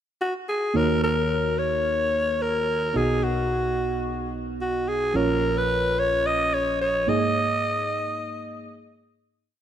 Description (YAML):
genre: pop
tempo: 109 BPM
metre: 4/4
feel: straight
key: Eb minor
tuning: A4 = 440 Hz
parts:
  - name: raspy alto saxophone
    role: melody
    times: 0.2-9.0 s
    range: Gb4 to Eb5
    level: -24 LUFS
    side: left 1 dB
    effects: none
  - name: mellow FM electric piano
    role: accompaniment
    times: 0.7-9.6 s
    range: Bb1 to D#5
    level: -26 LUFS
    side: right 2 dB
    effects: chorus
room: moderate lush hall reverb, RT60 3.0 s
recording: none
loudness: -22 LUFS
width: side -9 dB against mid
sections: 0.0-0.7 pickup bar; 0.7-9.6 verse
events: fade-out 7.4-9.6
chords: 0.0 N.C.; 0.7 Ebm7; 3.0 B; 5.2 Bbm; 7.1 Absus2